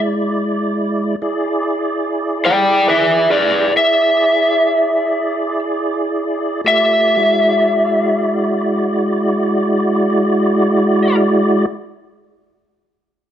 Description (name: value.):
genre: blues.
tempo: 37-51 BPM (dotted quarters).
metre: 12/8.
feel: straight.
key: E mixolydian.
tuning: A4 = 440 Hz.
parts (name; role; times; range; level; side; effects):
tonewheel organ; sustained chords; 0.0-11.7 s; G#3 to D5; -16 LUFS; right 1 dB; slow rotary speaker, chorus vibrato.
lead guitar through a small cranked amp; melody; 2.5-11.2 s; B4 to G5; -14 LUFS; left 1 dB; overdrive, plate reverb.
room: moderate studio reverb, RT60 0.7 s.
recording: dark, warm production.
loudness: -13 LUFS.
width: side -10 dB against mid.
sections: 0.0-6.6 A section; 6.6-13.1 B section.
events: slowing down 0.0-6.6.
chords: 0.0 E7; 6.6 E9.